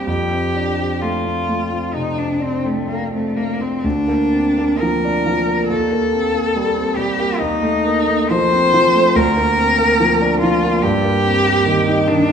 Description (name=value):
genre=classical, romantic duo for cello and grand piano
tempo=60-74 BPM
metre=4/4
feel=rubato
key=Bb major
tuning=A4 = 440 Hz
part: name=warm cello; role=melody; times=0.0-12.3 s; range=A3 to C5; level=-17 LUFS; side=left 1 dB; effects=none
part: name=dark concert grand piano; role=accompaniment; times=0.0-12.3 s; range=D2 to Eb4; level=-18 LUFS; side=right 1 dB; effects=none
room=wet recital hall reverb, RT60 1.5 s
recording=minimal, uncompressed stereo recording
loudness=-15 LUFS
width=side -7 dB against mid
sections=0.0-12.3 A section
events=none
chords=0.1 F; 3.8 Bb/D; 5.7 Cm7/Eb; 7.4 F7/Eb; 9.2 Bb/D; 10.8 Eb/G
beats=| 0.07 1.01 1.94 2.88 | 3.84 4.81 5.69 6.54 | 7.38 8.30 9.15 9.99 | 10.83 11.65